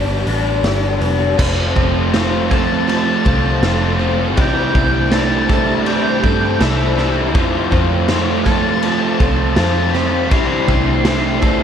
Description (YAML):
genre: rock, shoegaze and dream pop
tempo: 81 BPM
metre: 4/4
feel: straight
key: unclear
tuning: A4 = 439 Hz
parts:
  - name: octave-fuzz lead guitar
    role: melody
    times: 0.0-11.6 s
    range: E5 to C6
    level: -23 LUFS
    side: left 1 dB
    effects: distortion, analog delay
  - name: picked plugged-in twelve-string acoustic guitar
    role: arpeggios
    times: 0.0-11.6 s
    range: G3 to A4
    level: -26 LUFS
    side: right 7 dB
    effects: lush chorus, analog delay
  - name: electric guitar through a small old amp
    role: riff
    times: 0.0-11.6 s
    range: F2 to D4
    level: -23 LUFS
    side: right 11 dB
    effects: reverse reverb
  - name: overdriven electric guitar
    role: riff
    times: 0.0-11.6 s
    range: G2 to F4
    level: -21 LUFS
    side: equal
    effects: none
  - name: raw garage guitar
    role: riff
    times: 0.0-11.6 s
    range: F2 to G4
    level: -21 LUFS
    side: left 8 dB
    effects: overdrive, analog chorus
  - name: vintage muted picked electric bass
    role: bass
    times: 0.0-11.6 s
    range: F1 to G2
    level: -20 LUFS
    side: equal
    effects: none
  - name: raw garage drum kit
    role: drums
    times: 0.3-11.6 s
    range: crash cymbal, hi-hat, kick drum, snare drum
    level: -19 LUFS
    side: equal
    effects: none
room: moderate plate reverb, RT60 1.9 s, small room ambience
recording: dreamy mix soaked in reverb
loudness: -13 LUFS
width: side -8 dB against mid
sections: 0.0-1.4 A section; 1.4-11.6 B section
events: none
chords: 0.0 G; 1.4 F; 4.4 C69; 7.4 F; 10.3 C69